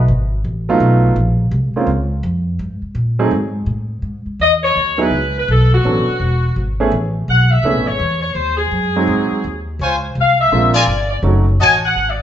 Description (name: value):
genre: jazz, big band swing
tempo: 167 BPM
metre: 4/4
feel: swing 64% on 8ths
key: C# minor from 4.0 s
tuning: A4 = 438 Hz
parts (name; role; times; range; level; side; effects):
- upright bass; bass; 0.0-12.2 s; E1 to Bb2; -17 LUFS; equal; none
- warm baby grand piano; accompaniment; 0.7-11.4 s; F#3 to A4; -18 LUFS; right 3 dB; none
- clear saxophone section; melody; 4.4-12.2 s; F#4 to G#5; -16 LUFS; left 2 dB; none
- bright trumpet section; stabs; 9.8-11.8 s; E#4 to A5; -18 LUFS; left 2 dB; none
room: wet large studio reverb, RT60 1.1 s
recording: band playing live in one room, nothing above 8.0 kHz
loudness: -13 LUFS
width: side -10 dB against mid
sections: 0.0-4.0 A section; 4.0-12.2 B section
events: none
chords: 0.0 B7#11; 1.2 Bbm; 2.6 Gmmaj7; 3.3 N.C.; 4.0 C#m9; 5.5 Bm7; 6.2 E; 6.9 Amaj7; 8.4 G#7; 9.8 C#maj7; 10.5 A#7; 11.2 D#m7b5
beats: 0.08 0.44 0.80 | 1.16 1.52 1.88 2.24 | 2.60 2.96 3.32 3.68 | 4.04 4.40 4.76 5.12 | 5.48 5.84 6.20 6.56 | 6.92 7.28 7.64 8.00 | 8.36 8.72 9.08 9.44 | 9.80 10.16 10.52 10.88 | 11.24 11.60 11.96